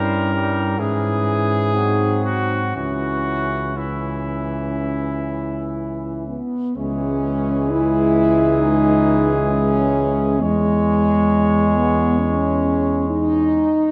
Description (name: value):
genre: classical, hymn-like piece for brass band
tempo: 58-69 BPM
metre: 4/4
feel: rubato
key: C# minor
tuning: A4 = 440 Hz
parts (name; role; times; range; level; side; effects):
- warm cornet; melody; 0.0-13.7 s; E4 to C#5; -28 LUFS; equal; none
- mellow French horn section; second line; 0.0-13.9 s; G#3 to E4; -23 LUFS; equal; none
- brilliant trombone; accompaniment; 0.0-13.7 s; E3 to G#3; -30 LUFS; equal; none
- clear euphonium; accompaniment; 0.0-13.7 s; G#3 to C#4; -28 LUFS; equal; none
- mellow tuba; bass; 0.0-13.7 s; C#2 to G#2; -26 LUFS; equal; none
room: moderate concert hall reverb, RT60 2.6 s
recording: none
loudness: -19 LUFS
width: mono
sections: 0.0-6.8 A section; 6.8-13.9 B section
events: none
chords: 0.0 Gdim7; 0.8 C#m/G#; 1.7 G#7; 2.8 C#m; 10.4 C#m/E